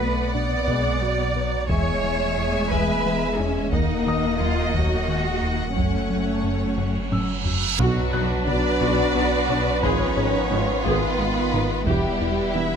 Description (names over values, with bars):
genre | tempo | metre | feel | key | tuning
cinematic, hybrid orchestral and electronic film score | 59 BPM (dotted quarters) | 6/8 | straight | unclear | A4 = 441 Hz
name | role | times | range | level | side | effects
warm symphonic violin section | melody | 0.0-12.8 s | F#4 to G#5 | -30 LUFS | left 4 dB | none
warm symphonic violin section | second line | 0.0-12.8 s | D4 to E5 | -30 LUFS | left 2 dB | none
dark symphonic viola section | accompaniment | 0.0-12.8 s | G#3 to B4 | -30 LUFS | right 1 dB | none
mellow French horn section | sustained chords | 0.0-12.8 s | B2 to A#3 | -30 LUFS | left 6 dB | none
tight sequenced synth | arpeggios | 0.0-12.8 s | D#3 to B4 | -33 LUFS | right 1 dB | chorus, digital delay
round analog bass | riff | 0.0-12.7 s | D#2 to B3 | -29 LUFS | left 3 dB | none
pure sine sub bass | bass | 0.0-12.8 s | D#1 to B1 | -31 LUFS | equal | none
warm symphonic cello section | bass | 0.0-12.8 s | F#3 to D5 | -27 LUFS | right 3 dB | none
warm symphonic double bass section | bass | 0.0-12.6 s | E1 to F#2 | -31 LUFS | right 5 dB | none
felt-muted upright piano | texture | 0.0-11.9 s | B4 to F#6 | -36 LUFS | left 4 dB | none
taiko ensemble | drums | 0.7-12.5 s | none | -30 LUFS | equal | none
reverse cymbal and sub drop | sound effects | 6.9-9.8 s | none | -30 LUFS | right 5 dB | none
bright trombone section | sustained chords | 7.8-12.8 s | D#3 to B3 | -30 LUFS | right 6 dB | none
mellow tuba | bass | 7.8-12.7 s | E1 to B1 | -32 LUFS | right 6 dB | none
room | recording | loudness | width
light reverb | close, detailed microphones | -20 LUFS | side -7 dB against mid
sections
0.0-7.8 A section; 7.8-12.8 B section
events
drum fill 6.8-7.8; reverse cymbal 6.9-7.8; impact 7.8-9.8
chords
0.0 Bm; 1.7 E; 3.7 D#m; 5.8 F#m; 7.8 Bm; 9.8 G#m; 11.9 Em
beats
0.68 | 1.69 2.71 | 3.73 4.75 | 5.76 6.78 | 7.80 8.81 | 9.83 10.85 | 11.86